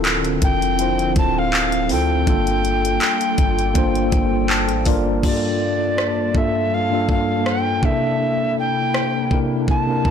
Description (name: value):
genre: contemporary R&B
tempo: 81 BPM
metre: 4/4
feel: swing 54% on 16ths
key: G dorian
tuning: A4 = 440 Hz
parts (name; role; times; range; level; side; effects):
- mellow tine electric piano; accompaniment; 0.0-10.1 s; G2 to A5; -21 LUFS; left 1 dB; medium stereo tremolo
- hollow soft pad; sustained chords; 0.0-10.1 s; C3 to A5; -27 LUFS; right 1 dB; ensemble chorus
- warm 808-style bass; bass; 0.0-5.2 s; D1 to D2; -23 LUFS; equal; none
- smooth R&B drum kit; drums; 0.0-10.1 s; crash cymbal, handclaps, hi-hat, kick drum, rim click; -21 LUFS; equal; none
- breathy soprano recorder; melody; 0.4-10.1 s; D5 to A5; -22 LUFS; left 2 dB; none
room: light reverb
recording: blown-out, overdriven recording, overdrive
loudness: -16 LUFS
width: side -8 dB against mid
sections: 0.0-5.2 A section; 5.2-10.1 B section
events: tine electric piano fill 4.1-5.2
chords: 0.0 Dm9; 2.3 Gm9; 7.8 C13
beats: 0.05 0.79 1.53 | 2.27 3.01 3.75 4.49 | 5.23 5.97 6.72 7.46 | 8.20 8.94 9.68